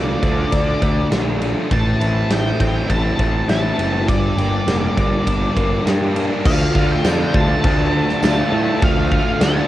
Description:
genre	rock, shoegaze and dream pop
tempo	101 BPM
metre	4/4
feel	straight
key	D minor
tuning	A4 = 440 Hz
part	octave-fuzz lead guitar	melody	0.0-9.7 s	D5 to A5	-25 LUFS	left 1 dB	distortion, cassette tape, analog delay
part	electric guitar through a small old amp	arpeggios	0.0-9.7 s	E3 to E4	-27 LUFS	equal	lush chorus, cassette tape, analog delay
part	overdriven electric guitar	riff	0.0-9.7 s	G2 to G4	-24 LUFS	right 6 dB	reverse reverb, cassette tape
part	thick fuzz guitar	riff	0.0-9.7 s	G2 to G4	-23 LUFS	left 5 dB	distortion, ensemble chorus, cassette tape
part	fuzz picked electric bass	bass	0.0-9.6 s	F1 to A2	-21 LUFS	equal	overdrive
part	huge arena drum kit	drums	0.2-9.6 s	crash cymbal, kick drum, ride cymbal, snare drum	-20 LUFS	equal	cassette tape
part	tambourine	percussion	7.1-9.5 s	none	-38 LUFS	right 9 dB	none
room	light reverb, studio reverb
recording	home recording on cassette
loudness	-15 LUFS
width	side -14 dB against mid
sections	0.0-6.5 A section; 6.5-9.7 B section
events	none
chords	0.0 Dm; 1.7 Am; 4.1 Gm; 6.5 Dm

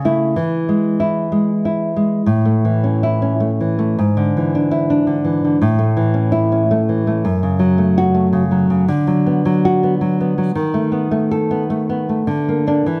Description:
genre	romantic piece for solo classical guitar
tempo	94-113 BPM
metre	3/4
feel	rubato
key	A major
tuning	A4 = 440 Hz
part	nylon-string guitar	solo	0.0-13.0 s	F#2 to A4	-17 LUFS	equal	none
room	moderate recital hall reverb, RT60 1.6 s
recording	none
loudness	-17 LUFS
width	mono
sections	0.0-2.3 A section; 2.3-13.0 B section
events	none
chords	0.4 E; 2.3 A; 4.0 E7/G#; 5.6 A; 7.3 F#m; 8.9 Bm/D; 10.5 B7/D#; 12.3 Bb/D

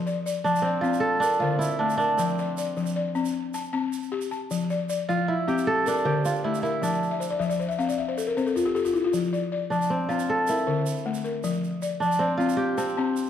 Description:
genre	west african traditional, West African string and xylophone music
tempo	104 BPM (dotted quarters)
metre	12/8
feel	straight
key	F major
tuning	A4 = 440 Hz
part	kora	melody	0.0-13.3 s	C4 to C5	-26 LUFS	right 3 dB	slapback echo
part	balafon	arpeggios	0.0-13.3 s	D3 to A5	-26 LUFS	left 4 dB	none
part	tube shaker	percussion	0.1-13.3 s	none	-42 LUFS	right 9 dB	none
room	moderate recital hall reverb, RT60 1.4 s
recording	dark, warm production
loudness	-23 LUFS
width	side -9 dB against mid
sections	0.0-13.3 A section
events	balafon fill 7.1-9.1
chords	0.0 F5; 1.0 D5; 2.2 F5; 3.3 C5; 4.5 F; 5.7 D5; 6.8 F5; 8.0 C5; 9.1 F5; 10.3 D5; 11.4 F5; 12.6 C5

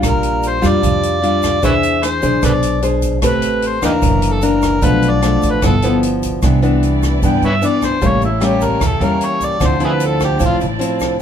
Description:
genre	bossa nova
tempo	150 BPM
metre	4/4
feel	straight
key	C major from 6.4 s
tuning	A4 = 440 Hz
part	nylon-string guitar	accompaniment	0.0-11.2 s	F#2 to C5	-16 LUFS	left 2 dB	none
part	upright bass	bass	0.0-10.8 s	F#1 to G2	-19 LUFS	right 1 dB	none
part	open jazz drum kit	drums	0.0-11.1 s	hi-hat, kick drum, rim click	-21 LUFS	right 2 dB	none
part	egg shaker	percussion	0.0-11.2 s	none	-38 LUFS	right 6 dB	none
part	overdriven harmonica	melody	0.1-10.6 s	D#4 to G5	-18 LUFS	equal	none
part	warm symphonic violin section	sustained chords	6.4-11.2 s	Bb3 to D5	-28 LUFS	equal	none
room	moderate studio reverb, RT60 0.7 s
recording	band playing live in one room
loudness	-13 LUFS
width	side -8 dB against mid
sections	0.0-6.4 A section; 6.4-11.2 B section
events	harmonica solo 6.4-11.2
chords	0.0 Bb6; 1.6 E7b13; 3.2 Am9; 4.0 F#aug7; 4.8 Bm7b5; 5.6 G13; 6.4 Cmaj9; 8.0 A7b9; 9.6 Dm9

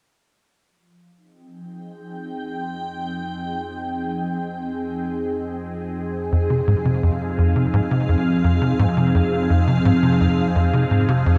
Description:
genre	ambient, sequencer-driven space music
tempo	85 BPM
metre	4/4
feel	straight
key	F minor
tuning	A4 = 439 Hz
part	evolving wavetable pad	sustained chords	1.6-11.4 s	F3 to G5	-25 LUFS	equal	ensemble chorus, built-in reverb, phaser
part	analog drone	bass	2.9-11.4 s	F2	-34 LUFS	equal	none
part	tight sequencer bass	riff	6.3-11.4 s	F2 to C3	-20 LUFS	equal	subtle chorus, tape echo
room	wet huge ambient reverb, RT60 7.8 s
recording	in a vast, echoing space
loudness	-21 LUFS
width	mono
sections	0.7-11.4 A section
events	none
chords	0.7 Fm7

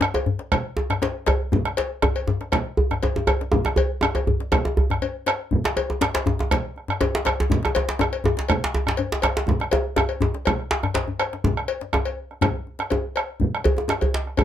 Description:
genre	west african traditional, West African drum ensemble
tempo	121 BPM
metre	4/4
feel	straight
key	none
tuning	none
part	bombo	percussion	0.0-14.4 s	none	-23 LUFS	right 3 dB	none
part	djembe	percussion	0.0-14.4 s	none	-26 LUFS	left 5 dB	none
part	cowbell	percussion	0.1-14.4 s	none	-28 LUFS	left 8 dB	none
part	djembe	percussion	0.1-14.4 s	none	-23 LUFS	right 1 dB	none
room	light reverb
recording	none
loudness	-20 LUFS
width	side -10 dB against mid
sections	0.0-11.4 A section; 11.4-14.4 B section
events	speeding up 0.0-14.4; drum fill 3.0-3.5, 9.5-11.4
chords	none

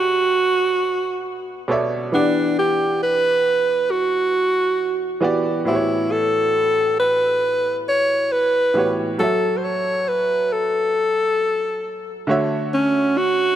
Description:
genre	R&B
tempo	68 BPM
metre	4/4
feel	straight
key	E dorian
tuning	A4 = 440 Hz
part	clear alto saxophone	melody	0.0-13.6 s	C#4 to C#5	-18 LUFS	equal	digital delay
part	clear grand piano	accompaniment	0.0-13.6 s	A2 to F#5	-24 LUFS	right 2 dB	none
room	light reverb, studio ambience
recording	none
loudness	-17 LUFS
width	side -11 dB against mid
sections	0.0-13.6 A section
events	none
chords	0.0 Bm11; 2.1 Em9; 5.7 A13; 9.2 F#m7; 12.3 Dmaj9

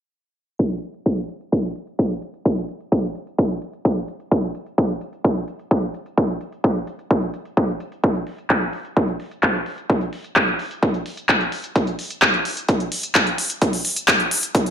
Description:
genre	EDM, festival progressive house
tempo	129 BPM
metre	4/4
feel	straight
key	none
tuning	none
part	big-room dance drum kit	drums	0.6-14.7 s	handclaps, hi-hat	-19 LUFS	equal	none
part	electronic kick drum	drums	0.6-14.6 s	none	-20 LUFS	equal	high-pass filter on kick, high-pass filter on room
room	light reverb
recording	low-pass filter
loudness	-19 LUFS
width	side -8 dB against mid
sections	0.6-14.7 A section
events	filter sweep 0.6-14.7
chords	none

